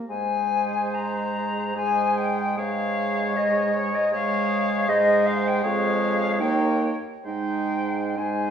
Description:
classical, slow romantic movement for wind quintet; 64-80 BPM; 3/4; rubato; Ab major; A4 = 437 Hz
warm French horn; accompaniment; 0.0-8.5 s; Ab3 to Bb3; -29 LUFS; right 2 dB
silver concert flute; melody; 0.1-8.5 s; Db5 to Bb5; -25 LUFS; left 2 dB
warm oboe; second line; 0.1-8.5 s; C5 to Db5; -29 LUFS; left 1 dB
warm clarinet; accompaniment; 0.1-8.5 s; Eb4 to Ab4; -31 LUFS; right 5 dB
warm bassoon; bass; 0.1-8.5 s; Eb2 to Ab2; -30 LUFS; right 1 dB
wet stone room reverb, RT60 1.2 s; heard from further back in the room; -21 LUFS; side -8 dB against mid
0.0-8.5 A section
0.1 Ab; 5.6 Db/F; 6.4 Eb7; 7.3 Ab

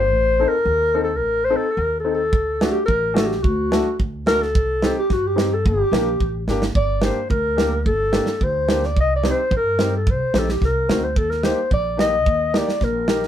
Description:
klezmer; 109 BPM; 2/4; straight; G harmonic minor; A4 = 440 Hz
breathy clarinet; melody; 0.0-13.3 s; F#4 to Eb5; -20 LUFS; left 1 dB
upright bass; bass; 0.0-13.3 s; G1 to G2; -24 LUFS; equal
warm upright piano; accompaniment; 0.4-13.2 s; A3 to A4; -25 LUFS; left 2 dB
modern studio drum kit; drums; 2.3-13.3 s; kick drum, snare drum; -21 LUFS; right 2 dB
light reverb; -17 LUFS; side -10 dB against mid
0.0-6.8 A section; 6.8-13.3 B section
drum fill 6.5
0.1 Adim; 2.3 D; 4.5 Cm; 5.6 Gm; 9.0 Cm; 11.2 Eb

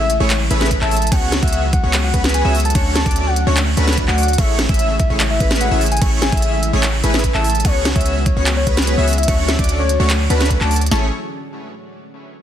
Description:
future bass; 147 BPM; 4/4; half-time; A major; A4 = 437 Hz
soft octave-layered synth lead; melody; 0.0-11.1 s; C#5 to A5; -23 LUFS; left 3 dB; chorus, sidechain pumping, tape echo
airy breathy pad; sustained chords; 0.0-11.1 s; A2 to G#4; -29 LUFS; equal; chorus, sidechain pumping
warm 808-style bass; bass; 0.0-11.1 s; A1 to D2; -18 LUFS; equal; sidechain pumping
trap drum kit; drums; 0.1-10.9 s; crash cymbal, handclaps, hi-hat, snare drum; -21 LUFS; equal; overdrive
airy dreamy lead; arpeggios; 0.2-11.1 s; B4 to E5; -25 LUFS; equal; chorus, phaser, sidechain pumping
supersaw chords; riff; 0.2-11.1 s; A3 to E5; -23 LUFS; equal; sidechain pumping, tape echo
trap drum kit; drums; 0.7-11.0 s; kick drum, snare drum; -18 LUFS; equal; overdrive
little or no reverb; dense, heavily limited modern master; -14 LUFS; side -10 dB against mid
0.0-10.9 A section; 10.9-12.4 B section
drop 0.0-10.9
0.0 Amaj7; 1.1 C#7sus4; 2.8 Dmaj7; 4.4 Amaj7; 7.6 C#7sus4; 9.3 Dmaj7; 10.9 Amaj7

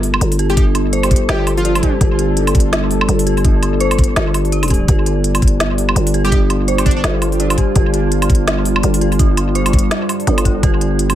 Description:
half-time drum and bass; 167 BPM; 4/4; swing 58% on 16ths, half-time; A4 = 440 Hz
deep dark ambient pad; sustained chords; 0.0-11.2 s; G3 to A4; -21 LUFS; equal; chorus, built-in reverb, sidechain pumping
dark detuned synth bell; arpeggios; 0.0-11.2 s; D4 to D5; -23 LUFS; right 1 dB; chorus, phaser, analog delay
growling 808-style bass; bass; 0.0-11.2 s; G1; -16 LUFS; equal
organic electronic drum kit; drums; 0.0-11.2 s; hi-hat, snare drum, woodblock; -20 LUFS; right 1 dB; tape echo
plucky unison lead; melody; 0.5-1.9, 6.2-7.0 s; D4 to G4; -24 LUFS; equal; analog delay
electronic kick drum; drums; 0.6-10.7 s; -14 LUFS; equal
little or no reverb; echo-heavy mix; -12 LUFS; side -12 dB against mid
0.0-11.2 A section
0.0 G5

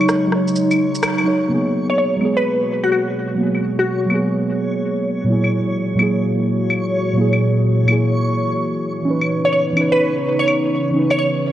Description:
future garage; 127 BPM; 4/4; swing 66% on 16ths; G# minor; A4 = 443 Hz
muted felt-like synth keys; accompaniment; 0.0-11.5 s; A#2 to C#5; -19 LUFS; right 1 dB; chorus, low-pass filter, tape echo
warbly tape-like pad; sustained chords; 0.0-11.5 s; A#2 to A#5; -22 LUFS; equal; chorus, built-in reverb
electronic claves, rim click and shaker; drums; 0.0-11.2 s; -22 LUFS; left 1 dB; low-pass filter on perc, vintage 12-bit sampler grit, small room ambience, low-pass filter on snare
backwards swelling texture; texture; 0.0-11.5 s; C#5; -27 LUFS; equal; built-in reverb
glassy wavetable pluck; melody; 1.9-4.1, 9.4-11.3 s; F#4 to C#5; -19 LUFS; equal; chorus, tape echo
wet lush hall reverb, RT60 2.2 s; cassette tape; -16 LUFS; side -12 dB against mid
0.0-1.5 A section; 1.5-11.5 B section
band accent 1.0; filter sweep on synth keys 1.5-11.5
0.0 D#m7; 1.5 G#m9; 5.3 F#9/A#; 9.1 C#m9

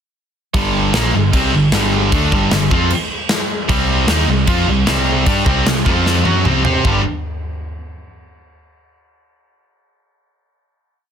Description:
hard rock; 152 BPM; 4/4; straight; A4 = 442 Hz
high-gain distorted guitar; riff; 0.5-7.0 s; G2 to C5; -19 LUFS; right 11 dB; distortion
high-gain distorted guitar; riff; 0.5-7.0 s; G2 to C5; -20 LUFS; left 2 dB; distortion
sludgy distorted guitar; riff; 0.5-7.0 s; G2 to C5; -21 LUFS; left 9 dB; overdrive
overdriven picked electric bass; bass; 0.5-7.0 s; G1 to C3; -19 LUFS; equal
big rock drum kit; drums; 0.5-6.9 s; crash cymbal, kick drum, snare drum, toms; -18 LUFS; equal
light reverb; dense, heavily limited modern master; -13 LUFS; side -8 dB against mid
0.5-6.8 riff; 6.8-8.4 final chord
drum fill 6.1-6.8
0.5 G5; 3.7 C5; 5.9 F5; 6.3 C5; 6.8 G5

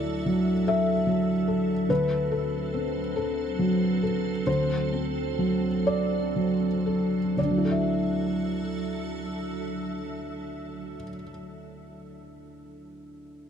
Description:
neoclassical piano and strings; 39-49 BPM (dotted quarters); 6/8; rubato; D major; A4 = 439 Hz
felt-muted upright piano; accompaniment; 0.0-13.5 s; D2 to E5; -26 LUFS; equal
soft additive organ-like pad; sustained chords; 0.0-11.0 s; F#3 to E5; -34 LUFS; right 1 dB; ensemble chorus, built-in reverb
light reverb; close, detailed microphones; -24 LUFS; side -8 dB against mid
0.0-7.4 A section; 7.4-10.4 B section
slowing down 0.7-7.4
0.0 Dadd9; 1.9 D7; 7.4 Dadd9

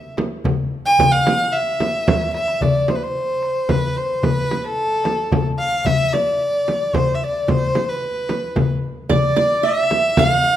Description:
Arabic maqam ensemble; 111 BPM; 3/4; straight; A4 = 440 Hz
warm violin; melody; 0.0-10.6 s; A4 to G5+45c; -18 LUFS; equal
darbuka; percussion; 0.2-10.3 s; -23 LUFS; left 4 dB
frame drum; percussion; 0.2-10.3 s; -22 LUFS; right 2 dB
qanun; second line; 9.1-10.6 s; D5 to F5+25c; -20 LUFS; right 7 dB
moderate recital hall reverb, RT60 1.6 s; minimal, uncompressed stereo recording; -16 LUFS; side -11 dB against mid
0.0-2.6 A section; 2.6-10.6 B section
drum fill 2.1-2.6

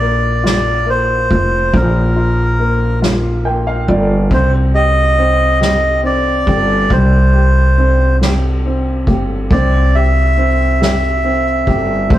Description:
six-eight pop ballad; 46 BPM (dotted quarters); 6/8; straight; A4 = 440 Hz
melodica; melody; 0.0-12.2 s; Bb4 to E5; -16 LUFS; equal
warm upright piano; accompaniment; 0.0-12.2 s; F3 to G5; -20 LUFS; left 1 dB
upright bass; bass; 0.0-12.2 s; F1 to C2; -14 LUFS; equal
soft-mallet drum kit; drums; 0.0-12.2 s; kick drum, ride cymbal, snare drum; -21 LUFS; equal
moderate stone room reverb, RT60 1.3 s; rough rehearsal-room recording; -11 LUFS; side -13 dB against mid
0.0-12.2 A section
upright piano fill 3.0-4.3
0.0 Bb; 4.3 C5

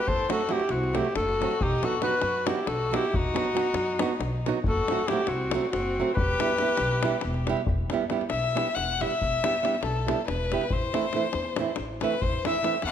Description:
balkan folk, Balkan wedding band; 276 BPM (eighths); 7/8; straight; E harmonic minor; A4 = 440 Hz
warm alto saxophone; melody; 0.0-7.4 s; F#4 to C5; -27 LUFS; equal
clear violin; second line; 0.0-12.9 s; C4 to F#5; -30 LUFS; left 5 dB
upright bass; bass; 0.1-12.9 s; E1 to F#2; -32 LUFS; equal
davul; percussion; 0.1-12.9 s; -31 LUFS; left 3 dB
nylon-string guitar; accompaniment; 0.3-12.8 s; E3 to G4; -30 LUFS; right 6 dB
moderate recital hall reverb, RT60 1.6 s; -24 LUFS; side -9 dB against mid
0.0-7.7 A section; 7.7-12.9 B section
violin solo 7.7-12.9
0.0 F#dim; 1.6 B; 4.7 F#dim; 6.2 Em; 10.7 Am

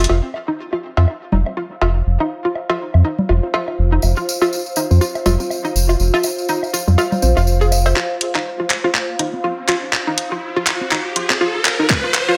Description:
minimal techno; 122 BPM; 4/4; swing 57% on 16ths; A4 = 444 Hz
hollow square pluck; riff; 0.0-12.3 s; Eb4 to C5; -23 LUFS; equal; analog chorus, sidechain pumping, tape echo
round analog bass; bass; 0.0-7.9 s; F1 to F2; -16 LUFS; equal; sidechain pumping
garage drum kit; drums; 0.0-0.1, 8.0-12.3 s; handclaps, hi-hat; -21 LUFS; equal; low-pass filter on hats, studio reverb, low-pass filter on snare
cowbell, woodblock and congas; percussion; 0.1-7.9 s; -26 LUFS; equal; studio reverb, dub echo
warbly tape-like pad; texture; 1.3-12.4 s; F4 to F5; -28 LUFS; equal; chorus, built-in reverb, phaser, sidechain pumping
filtered dub chord stab; stabs; 1.0-11.4 s; C4 to C5; -31 LUFS; equal
tambourine; percussion; 4.0-7.9 s; -28 LUFS; equal
riser; sound effects; 9.0-12.4 s; -26 LUFS; equal
electronic kick drum; drums; 11.9-12.0 s; -21 LUFS; equal; studio reverb
moderate digital room reverb, RT60 1.1 s; high-pass filter; -18 LUFS; mono
0.1-8.0 A section; 8.0-12.4 B section
filter sweep on synth arpeggio sound 0.1-8.0, 8.0-12.4; build-up 8.0-12.4; drum fill 8.0-12.4; riser 9.0-12.4
0.1 F5

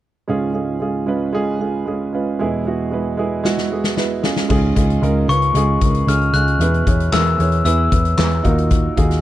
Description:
piano-driven pop; 114 BPM; 4/4; straight; A4 = 440 Hz
warm grand piano; accompaniment; 0.3-9.2 s; Db2 to Db5; -19 LUFS; right 3 dB
loose indie drum kit; drums; 3.4-9.2 s; crash cymbal, handclaps, hi-hat, kick drum, snare drum; -20 LUFS; left 1 dB
vintage muted picked electric bass; bass; 4.5-9.2 s; Db2 to E2; -17 LUFS; left 1 dB
glockenspiel with hard plastic mallets; melody; 5.3-8.1 s; Db6 to Gb6; -20 LUFS; left 4 dB; slapback echo
small room reverb; -15 LUFS; side -14 dB against mid
0.3-4.5 A section; 4.5-9.2 B section
drum fill 3.4-4.5
0.3 Db; 2.4 E; 4.2 Db; 6.6 E; 8.4 Ebmadd9

